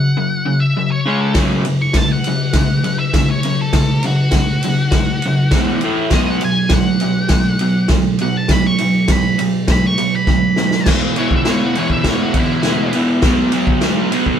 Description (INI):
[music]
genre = garage rock duo or trio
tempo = 101 BPM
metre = 4/4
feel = straight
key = unclear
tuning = A4 = 440 Hz
[part]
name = octave-fuzz lead guitar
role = melody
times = 0.0-12.9 s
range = E4 to C#6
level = -22 LUFS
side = equal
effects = distortion
[part]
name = crunchy overdriven guitar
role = riff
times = 0.0-14.4 s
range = E2 to C#4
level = -16 LUFS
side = equal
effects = none
[part]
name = vintage drum kit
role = drums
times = 1.3-14.4 s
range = crash cymbal, kick drum, ride cymbal, snare drum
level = -17 LUFS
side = equal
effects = none
[sound]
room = wet stone room reverb, RT60 1.0 s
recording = band playing live in one room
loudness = -13 LUFS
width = side -9 dB against mid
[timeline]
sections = 0.0-10.9 A section; 10.9-14.4 B section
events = drum fill 10.3-10.9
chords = 0.0 F#5; 1.1 C#5; 1.4 F#5; 5.5 E5; 5.8 A5; 6.1 B5; 10.9 E5; 13.2 B5